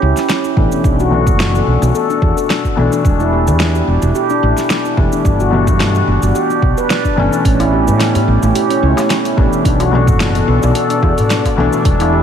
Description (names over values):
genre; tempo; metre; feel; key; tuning
organic downtempo; 109 BPM; 4/4; swing 54% on 16ths; unclear; A4 = 437 Hz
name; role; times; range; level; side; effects
handpan; arpeggios; 0.0-12.2 s; C#4 to D5; -16 LUFS; equal; ping-pong delay, shimmer reverb
woody fretless electric bass; bass; 0.0-12.2 s; E1 to A2; -15 LUFS; right 1 dB; wide subtle chorus, sidechain pumping
deep house drum kit; drums; 0.2-12.1 s; hi-hat, shaker, snare drum; -22 LUFS; equal; overdrive
felt-muted upright piano; accompaniment; 0.6-12.2 s; B2 to D4; -19 LUFS; left 3 dB; sidechain pumping, low-pass filter, ping-pong delay, shimmer reverb
electronic kick drum; drums; 0.6-12.0 s; none; -16 LUFS; right 1 dB; none
warm analog pad; sustained chords; 7.5-12.2 s; B2 to D5; -21 LUFS; right 1 dB; chorus, sidechain pumping, shimmer reverb
darbuka; percussion; 7.6-12.2 s; none; -22 LUFS; left 1 dB; none
room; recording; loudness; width
light reverb, studio ambience; none; -11 LUFS; side -8 dB against mid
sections
0.0-12.2 A section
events
filter sweep on felt piano 0.0-12.2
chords
0.0 A7; 0.8 Bm7; 3.0 Em7; 5.2 Gmaj7; 7.5 A7; 9.7 Bm7